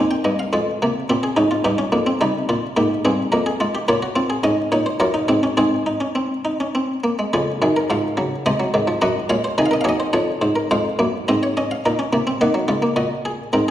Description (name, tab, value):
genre	classical, baroque-style 4-part fugue for harpsichord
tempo	106 BPM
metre	3/4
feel	straight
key	Db major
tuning	A4 = 442 Hz
part	buff-stop harpsichord	solo	0.0-13.7 s	Eb2 to Ab5	-17 LUFS	equal	none
room	wet recital hall reverb, RT60 1.7 s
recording	recorded in a church or concert hall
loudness	-17 LUFS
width	side -12 dB against mid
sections	0.0-7.3 A section; 7.3-10.7 B section; 10.7-13.7 A section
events	none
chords	0.0 Eb; 0.5 Db/F; 1.6 Gm7b5; 2.2 Cm; 3.3 Fm; 3.9 Bbm; 5.0 Ebm7/Gb; 5.6 Ab; 7.3 Db/F; 8.5 Ab/C; 9.0 Ab7/Gb; 10.1 Db/F; 10.7 Fm7; 11.8 Bbm; 12.4 Ebm7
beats	| 0.53 1.09 1.64 | 2.20 2.76 3.32 | 3.87 4.43 5.00 | 5.58 6.16 6.75 | 7.33 7.89 8.46 | 9.02 9.57 10.14 | 10.71 11.28 11.85 | 12.41 12.98 13.54